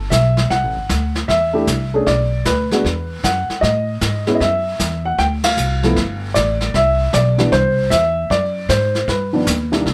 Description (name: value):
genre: jazz piano trio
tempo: 154 BPM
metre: 4/4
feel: swing 65% on 8ths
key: unclear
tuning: A4 = 440 Hz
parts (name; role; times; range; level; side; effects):
- dark baby grand piano; melody; 0.0-9.8 s; C2 to G5; -20 LUFS; equal; none
- upright bass; bass; 0.0-9.9 s; G1 to A2; -22 LUFS; equal; none
- vintage brush drum kit; drums; 0.1-9.9 s; brushed snare drum, hi-hat, kick drum, ride cymbal, snare drum; -25 LUFS; equal; none
room: light reverb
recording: none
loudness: -17 LUFS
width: mono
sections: 0.0-9.9 A section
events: band accent 5.4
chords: 0.0 Gadd9; 0.5 Cadd9; 2.1 Bm; 2.8 Esus2; 3.6 Amaj7(no3); 5.2 Dm7; 6.0 Gsus2; 6.7 Cmaj7; 8.3 G#7#11/F#; 9.1 G(b13)